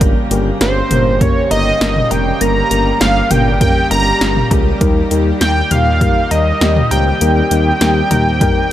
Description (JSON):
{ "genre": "synth-pop", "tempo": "100 BPM", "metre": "4/4", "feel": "straight", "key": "unclear", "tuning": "A4 = 440 Hz", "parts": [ { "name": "muted felt-like synth keys", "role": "accompaniment", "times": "0.0-8.6 s", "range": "G3 to Db5", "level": "-18 LUFS", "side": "left 3 dB", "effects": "chorus, shimmer reverb" }, { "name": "lush unison pad", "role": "sustained chords", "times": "0.0-8.7 s", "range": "Db3 to G4", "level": "-23 LUFS", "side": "right 1 dB", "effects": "chorus, shimmer reverb" }, { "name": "smooth synth bass", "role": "bass", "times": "0.0-8.4 s", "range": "F1 to Eb2", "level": "-17 LUFS", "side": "equal", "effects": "none" }, { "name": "punchy analog drum machine", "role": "drums", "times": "0.0-8.6 s", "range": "cowbell, hi-hat, kick drum, snare drum, toms", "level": "-16 LUFS", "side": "equal", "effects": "overdrive" }, { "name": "fat analog lead", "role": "melody", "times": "0.6-8.7 s", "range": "C5 to Bb5", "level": "-16 LUFS", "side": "right 1 dB", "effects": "digital delay, shimmer reverb" } ], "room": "light reverb, digital ambience", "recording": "none", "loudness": "-11 LUFS", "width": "side -12 dB against mid", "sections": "0.0-8.7 A section", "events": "synth keys fill 8.4-8.7", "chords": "0.0 Gdim; 4.8 Eb" }